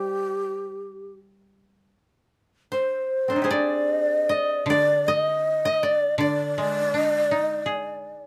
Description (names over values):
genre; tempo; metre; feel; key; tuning
japanese traditional, Japanese chamber music; 74-83 BPM; 4/4; rubato; unclear; A4 = 440 Hz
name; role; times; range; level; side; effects
breathy mellow long shakuhachi; melody; 0.0-8.3 s; G4 to Eb5; -25 LUFS; equal; none
koto; second line; 0.0-8.3 s; C4 to Eb5; -30 LUFS; equal; none
koto; accompaniment; 0.0-8.3 s; D3 to Ab4; -32 LUFS; equal; none
room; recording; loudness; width
light reverb; none; -24 LUFS; mono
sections
0.0-3.1 A section; 3.1-8.3 B section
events
none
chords
none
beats
| 0.01 0.76 1.52 2.32 | 3.12 3.89 4.67 5.45 | 6.20 6.94 7.67